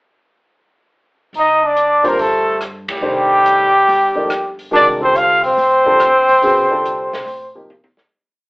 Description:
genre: modal jazz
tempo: 142 BPM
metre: 4/4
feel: swing 66% on 8ths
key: C dorian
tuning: A4 = 440 Hz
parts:
  - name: upright bass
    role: bass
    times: 1.3-8.1 s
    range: G1 to G2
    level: -39 LUFS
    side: equal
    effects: none
  - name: open jazz drum kit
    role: drums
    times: 1.3-8.1 s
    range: hi-hat, kick drum, ride cymbal, rim click, snare drum, toms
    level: -30 LUFS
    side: equal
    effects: none
  - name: breathy trumpet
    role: melody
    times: 1.4-7.7 s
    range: G4 to F5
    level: -13 LUFS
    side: equal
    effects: none
  - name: trombone with metal mute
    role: second line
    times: 1.4-7.7 s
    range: G3 to F4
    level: -18 LUFS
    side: equal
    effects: none
  - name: warm upright piano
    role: accompaniment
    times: 2.0-7.7 s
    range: C3 to D5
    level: -21 LUFS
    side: equal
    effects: none
room: wet studio reverb, RT60 0.6 s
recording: heard from further back in the room, telephone sound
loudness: -12 LUFS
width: side -33 dB against mid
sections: 1.3-8.1 A section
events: band accent 2.8; fade-out 6.4-8.1; drum fill 7.7-8.1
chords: 1.3 Cmadd9; 4.7 Dm7

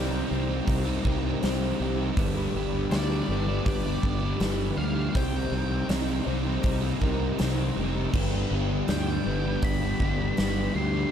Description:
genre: rock, shoegaze and dream pop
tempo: 80 BPM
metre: 4/4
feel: straight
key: unclear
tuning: A4 = 440 Hz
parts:
  - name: sweeping resonant pad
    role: sustained chords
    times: 0.0-11.1 s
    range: B3 to B5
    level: -38 LUFS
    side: left 1 dB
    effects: chorus
  - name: fingerpicked twelve-string acoustic guitar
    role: arpeggios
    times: 0.0-11.1 s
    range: G4 to D5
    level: -37 LUFS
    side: left 4 dB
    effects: lush chorus, tape echo
  - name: overdriven semi-hollow guitar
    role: riff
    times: 0.0-11.1 s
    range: G2 to G4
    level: -32 LUFS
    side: right 13 dB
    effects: reverse reverb
  - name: thick fuzz guitar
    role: riff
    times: 0.0-11.1 s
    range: G2 to C4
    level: -31 LUFS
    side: left 10 dB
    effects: distortion, analog chorus
  - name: fuzz fingered electric bass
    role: bass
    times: 0.0-11.0 s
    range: F1 to D2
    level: -29 LUFS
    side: right 1 dB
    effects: overdrive
  - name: huge arena drum kit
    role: drums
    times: 0.7-10.6 s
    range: crash cymbal, hi-hat, kick drum, snare drum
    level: -30 LUFS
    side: equal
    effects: none
  - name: octave-fuzz lead guitar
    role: melody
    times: 2.9-11.1 s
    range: D5 to C6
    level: -37 LUFS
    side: left 1 dB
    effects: distortion, tape echo
room: small room ambience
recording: dark, warm production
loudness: -24 LUFS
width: side -8 dB against mid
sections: 0.0-11.1 A section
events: none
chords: 0.0 Cm7; 2.2 G; 5.2 Cm7; 8.1 G

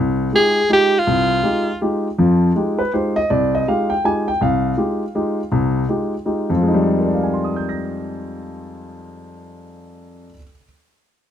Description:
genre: jazz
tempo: 163 BPM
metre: 3/4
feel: swing 65% on 8ths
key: F dorian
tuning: A4 = 440 Hz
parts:
  - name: warm grand piano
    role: accompaniment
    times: 0.0-10.6 s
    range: C2 to Bb6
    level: -18 LUFS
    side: left 1 dB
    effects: none
  - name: edgy soprano saxophone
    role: melody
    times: 0.4-1.8 s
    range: F4 to Ab4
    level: -15 LUFS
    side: right 1 dB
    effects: none
room: light reverb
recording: close, detailed microphones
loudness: -16 LUFS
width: side -9 dB against mid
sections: 0.0-2.2 A section; 2.2-6.6 B section; 6.6-8.8 C section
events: none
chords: 0.0 Fm9

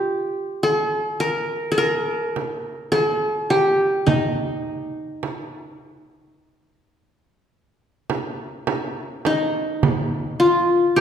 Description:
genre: Arabic maqam ensemble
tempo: 104 BPM (eighths)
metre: 10/8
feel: straight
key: unclear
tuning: A4 = 440 Hz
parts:
  - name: qanun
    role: melody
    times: 0.0-11.0 s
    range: Eb4 to Bb4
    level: -20 LUFS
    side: left 1 dB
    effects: none
  - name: frame drum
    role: percussion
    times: 2.4-11.0 s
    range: none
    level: -24 LUFS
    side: right 4 dB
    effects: none
room: wet recital hall reverb, RT60 1.8 s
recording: heard from further back in the room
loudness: -20 LUFS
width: side -8 dB against mid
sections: 0.0-11.0 A section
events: none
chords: none

